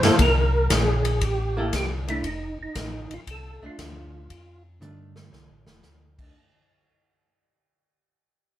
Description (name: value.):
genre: soul jazz organ trio.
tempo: 117 BPM.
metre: 4/4.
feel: swing 68% on 8ths.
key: F mixolydian.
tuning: A4 = 440 Hz.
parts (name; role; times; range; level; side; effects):
percussive tonewheel organ; melody; 0.0-4.6 s; Eb4 to C5; -27 LUFS; right 1 dB; slow rotary speaker, chorus vibrato.
archtop guitar, miked and amplified; accompaniment; 0.0-6.4 s; Eb3 to A4; -26 LUFS; equal; none.
mellow tonewheel organ; bass; 0.0-6.3 s; F1 to G2; -26 LUFS; equal; overdrive, chorus vibrato, slow rotary speaker.
swinging big-band drum kit; drums; 0.0-6.3 s; crash cymbal, hi-hat, kick drum, ride cymbal, snare drum, toms; -25 LUFS; left 1 dB; none.
room: moderate studio reverb, RT60 0.5 s.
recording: band playing live in one room.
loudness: -21 LUFS.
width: side -12 dB against mid.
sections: 0.0-6.4 A section.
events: fade-out 0.0-6.4; drum fill 4.8-5.8.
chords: 0.2 C7(no3); 2.2 F13.